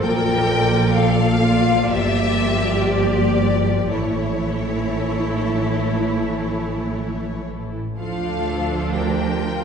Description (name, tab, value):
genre	classical, slow romantic movement for string orchestra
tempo	58-65 BPM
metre	4/4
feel	rubato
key	unclear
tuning	A4 = 440 Hz
part	clear studio violin section	melody	0.0-9.6 s	C#5 to G5	-25 LUFS	left 5 dB	none
part	rich studio violin section	second line	0.0-9.6 s	D4 to D5	-28 LUFS	left 2 dB	none
part	rich studio viola section	accompaniment	0.0-9.6 s	E3 to Bb3	-22 LUFS	equal	none
part	rich studio cello section	bass	0.0-9.6 s	E4 to Bb4	-27 LUFS	right 1 dB	none
part	warm studio double bass section	bass	0.0-9.6 s	G1 to D2	-23 LUFS	right 3 dB	none
room	wet scoring stage reverb, RT60 1.9 s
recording	heard from further back in the room, nothing above 10.3 kHz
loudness	-18 LUFS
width	side -6 dB against mid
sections	0.0-9.6 A section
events	none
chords	0.0 Bbmaj7; 1.9 Gm7; 3.9 A; 8.0 Dm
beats	| 0.03 0.95 1.91 2.89 | 3.91 4.91 5.94 6.97 | 7.98 8.94